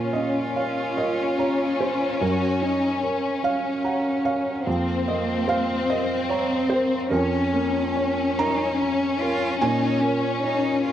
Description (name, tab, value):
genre	neoclassical piano and strings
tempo	49 BPM (dotted quarters)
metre	6/8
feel	rubato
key	Bb minor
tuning	A4 = 440 Hz
part	warm studio violin section	melody	0.0-10.9 s	C4 to Db4	-24 LUFS	left 5 dB	none
part	warm cello	second line	0.0-10.9 s	Bb3 to Gb4	-29 LUFS	right 5 dB	none
part	felt-muted upright piano	accompaniment	0.0-10.9 s	F2 to Bb5	-25 LUFS	right 3 dB	none
room	little or no reverb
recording	dry, close 1970s-style studio recording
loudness	-21 LUFS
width	side -11 dB against mid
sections	0.0-10.9 A section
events	none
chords	0.0 Bbm; 2.2 Gb; 4.7 Fsus4; 7.1 Bbm/F; 9.6 Bbm